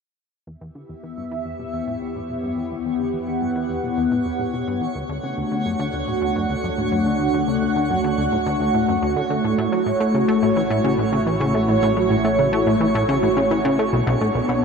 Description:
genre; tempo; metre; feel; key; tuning
ambient, sequencer-driven space music; 107 BPM; 4/4; straight; E dorian; A4 = 440 Hz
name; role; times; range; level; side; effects
phased analog pad; sustained chords; 0.5-14.6 s; A3 to F#5; -20 LUFS; equal; phaser, chorus
plucky analog bass; riff; 0.5-14.6 s; B1 to A3; -24 LUFS; equal; ping-pong delay
analog drone; bass; 1.1-14.6 s; A1 to E2; -34 LUFS; equal; chorus
twinkling granular texture; texture; 2.0-14.6 s; C#5; -32 LUFS; right 1 dB; built-in reverb
room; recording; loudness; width
wet huge ambient reverb, RT60 9.6 s; in a vast, echoing space; -18 LUFS; side -5 dB against mid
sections
0.5-14.6 A section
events
fade-in on analog synth bass 0.5-14.6; fade-in on synth drone 0.5-14.6; fade-in on synth texture 0.5-14.6; filter sweep on analog synth pad 0.5-14.6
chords
0.5 Em; 5.0 D; 9.4 A6; 13.9 Bmadd9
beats
| 0.47 1.03 1.59 2.15 | 2.71 3.27 3.84 4.40 | 4.96 5.52 6.08 6.64 | 7.20 7.76 8.32 8.88 | 9.44 10.00 10.56 11.12 | 11.69 12.25 12.81 13.37 | 13.93 14.49

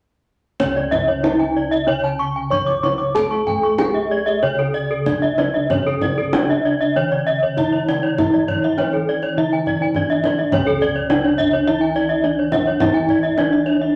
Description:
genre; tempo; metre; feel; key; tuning
Balinese gamelan; 94-105 BPM; 4/4; straight; C# pelog; A4 = 440 Hz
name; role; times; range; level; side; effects
gamelan-type bronze metallophone; melody; 0.6-13.9 s; C#4 to C#5; -23 LUFS; equal; none
gamelan-type bronze metallophone; accompaniment; 0.6-14.0 s; C#3 to E3-50c; -30 LUFS; equal; none
gamelan-type bronze metallophone; arpeggios; 0.6-14.0 s; A4-40c to C#6; -25 LUFS; equal; none
gamelan-type bossed gongs; bass; 0.6-14.0 s; C#2 to A4-40c; -29 LUFS; equal; none
kendang; percussion; 0.6-13.9 s; none; -27 LUFS; equal; none
gamelan-type bronze metallophone; arpeggios; 0.9-13.8 s; A4-40c to D6; -25 LUFS; equal; none
room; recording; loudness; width
wet studio reverb, RT60 0.8 s; none; -18 LUFS; mono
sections
0.6-10.5 A section; 10.5-14.0 B section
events
none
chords
none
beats
| 0.60 1.24 1.88 2.51 | 3.15 3.79 4.43 5.07 | 5.71 6.34 6.96 7.58 | 8.19 8.78 9.37 9.95 | 10.53 11.10 11.67 12.24 | 12.81 13.38 13.95

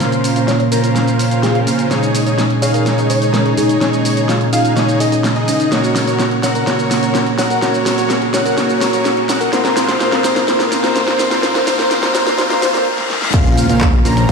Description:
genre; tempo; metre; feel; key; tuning
EDM, festival progressive house; 126 BPM; 4/4; straight; Bb minor; A4 = 441 Hz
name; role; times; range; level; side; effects
mellow electric guitar; accompaniment; 0.0-12.8 s; Bb2 to Db5; -19 LUFS; right 3 dB; wide subtle chorus, sidechain pumping
lush unison pad; sustained chords; 0.0-14.3 s; C3 to C5; -24 LUFS; left 2 dB; none
wide unison lead; arpeggios; 0.0-14.3 s; C5 to Bb5; -22 LUFS; left 1 dB; cassette tape, sidechain pumping, digital delay
dense compressed supersaw; riff; 0.0-14.3 s; Db4 to Bb5; -19 LUFS; left 1 dB; sidechain pumping, low-pass filter, digital delay
pop drum kit; drums; 0.0-14.3 s; crash cymbal, finger snaps, handclaps, hi-hat, shaker, snare drum; -19 LUFS; equal; none
riser, reverse cymbal and impact; sound effects; 3.6-14.3 s; none; -27 LUFS; left 2 dB; none
bell-like FM electric piano; melody; 0.5-12.8 s; F4 to Db5; -22 LUFS; left 1 dB; chorus, phaser, digital delay
fat analog bass; bass; 13.3-14.3 s; Bb1; -15 LUFS; equal; sidechain pumping
electronic kick drum; drums; 13.3-14.3 s; none; -13 LUFS; equal; none
room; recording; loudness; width
wet lush hall reverb, RT60 1.9 s, digital ambience; played on a big sound system in a bare room, large studio reverb, high-pass filter; -12 LUFS; side -5 dB against mid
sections
0.0-13.3 A section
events
build-up 0.0-13.3; drum fill 0.0-12.9, 13.0-13.3; filter sweep on analog synth lead 0.0-13.3; filter sweep 0.0-13.3; reverse cymbal 12.4-13.3; stop 12.9-13.3; impact 13.3-14.3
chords
0.0 Bbmadd9; 1.9 Absus4/Bb; 5.7 Gb/Bb; 9.5 Fsus4/Bb; 13.3 Bbmadd9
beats
| 0.00 0.48 0.96 1.43 | 1.91 2.38 2.86 3.34 | 3.81 4.29 4.77 5.24 | 5.72 6.19 6.67 7.15 | 7.62 8.10 8.57 9.05 | 9.53 10.00 10.48 10.96 | 11.43 11.91 12.38 12.86 | 13.34 13.81 14.29

